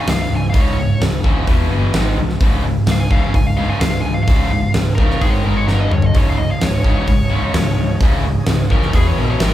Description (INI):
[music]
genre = hard rock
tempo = 129 BPM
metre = 4/4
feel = straight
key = unclear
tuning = A4 = 439 Hz
[part]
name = nasal lead guitar with a parked wah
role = melody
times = 0.0-9.5 s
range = Ab4 to Ab5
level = -24 LUFS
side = left 1 dB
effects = overdrive
[part]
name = cranked stack guitar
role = riff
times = 0.0-9.5 s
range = Db2 to Ab3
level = -21 LUFS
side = left 3 dB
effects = overdrive
[part]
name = distorted electric guitar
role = riff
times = 0.0-9.5 s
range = Db2 to Ab3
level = -23 LUFS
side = right 4 dB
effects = distortion
[part]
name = picked electric bass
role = bass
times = 0.1-9.5 s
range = Db1 to G2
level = -20 LUFS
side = equal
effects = none
[part]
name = huge arena drum kit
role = drums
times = 0.1-9.5 s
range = hi-hat, kick drum, snare drum, toms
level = -17 LUFS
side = equal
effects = none
[part]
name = overdriven tonewheel organ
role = sustained chords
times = 6.1-9.5 s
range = E3 to Eb5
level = -35 LUFS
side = right 1 dB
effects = none
[sound]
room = moderate large studio reverb, RT60 1.1 s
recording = band playing live in one room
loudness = -13 LUFS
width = side -13 dB against mid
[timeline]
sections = 0.0-9.5 A section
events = lead electric guitar solo 0.0-9.5; drum fill 5.7-6.1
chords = 0.0 Db5; 1.5 E5; 1.9 Ab5; 2.4 Db; 5.2 Ab5; 5.7 G5; 6.1 Db5; 8.9 E5